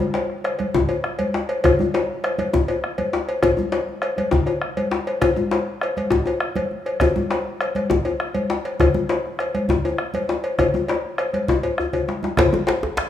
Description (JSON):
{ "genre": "west african traditional, West African drum ensemble", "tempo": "134 BPM (dotted quarters)", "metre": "12/8", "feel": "straight", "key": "none", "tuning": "none", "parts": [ { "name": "congas", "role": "percussion", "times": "0.0-12.7 s", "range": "none", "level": "-27 LUFS", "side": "right 1 dB", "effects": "none" }, { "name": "cowbell", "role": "percussion", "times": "0.1-12.8 s", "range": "none", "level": "-24 LUFS", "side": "left 1 dB", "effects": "none" }, { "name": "djembe", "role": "percussion", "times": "0.1-12.8 s", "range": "none", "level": "-23 LUFS", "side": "left 5 dB", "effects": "none" }, { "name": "bombo", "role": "percussion", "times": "0.3-13.1 s", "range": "none", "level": "-27 LUFS", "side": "equal", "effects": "none" }, { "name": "djembe", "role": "percussion", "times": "12.4-13.1 s", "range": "none", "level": "-23 LUFS", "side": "right 2 dB", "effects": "none" } ], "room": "moderate lush hall reverb, RT60 2.5 s", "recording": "rough home demo mix", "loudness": "-19 LUFS", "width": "side -10 dB against mid", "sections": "0.0-12.4 A section", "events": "drum fill 11.6-12.4", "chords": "none", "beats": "0.30 0.75 1.19 | 1.64 2.09 2.54 2.98 | 3.43 3.88 4.33 4.77 | 5.22 5.67 6.12 6.56 | 7.01 7.46 7.91 8.35 | 8.80 9.25 9.70 10.14 | 10.59 11.04 11.48 11.93 | 12.38 12.83" }